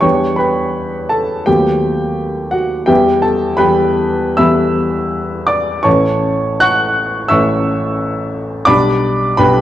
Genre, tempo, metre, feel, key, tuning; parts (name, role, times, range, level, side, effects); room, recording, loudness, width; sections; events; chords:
classical, romantic character piece for solo piano; 83 BPM; 4/4; uneven beats, rubato; A4 = 440 Hz
clear upright piano; solo; 0.0-9.6 s; A1 to F#6; -12 LUFS; equal
moderate recital hall reverb, RT60 1.6 s; dark, warm production; -12 LUFS; side -12 dB against mid
0.0-9.6 A section
0.0 Em7; 1.5 B7/D#; 2.9 Em; 5.9 A; 8.7 G/B